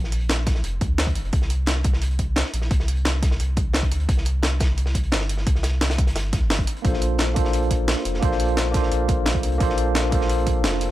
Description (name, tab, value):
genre	liquid drum and bass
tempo	174 BPM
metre	4/4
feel	straight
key	Bb major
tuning	A4 = 440 Hz
part	warm sub bass	bass	0.0-10.9 s	F1 to Eb2	-23 LUFS	equal	none
part	crunchy breakbeat drum kit	drums	0.0-10.9 s	hi-hat, snare drum	-33 LUFS	equal	high-pass filter on hats, high-pass filter on snare, high-pass filter on room
part	jungle sampler-style drum kit	drums	0.1-10.9 s	hi-hat, snare drum	-26 LUFS	equal	none
part	electronic kick drum	drums	0.5-10.5 s	none	-23 LUFS	equal	overdrive
part	bright tine electric piano	accompaniment	6.8-10.9 s	Bb3 to C5	-24 LUFS	equal	medium stereo tremolo, digital delay
room	little or no reverb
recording	dark, warm production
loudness	-19 LUFS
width	side -15 dB against mid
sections	0.0-10.9 A section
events	none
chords	0.0 Bb; 1.3 C5; 6.8 Bbmaj9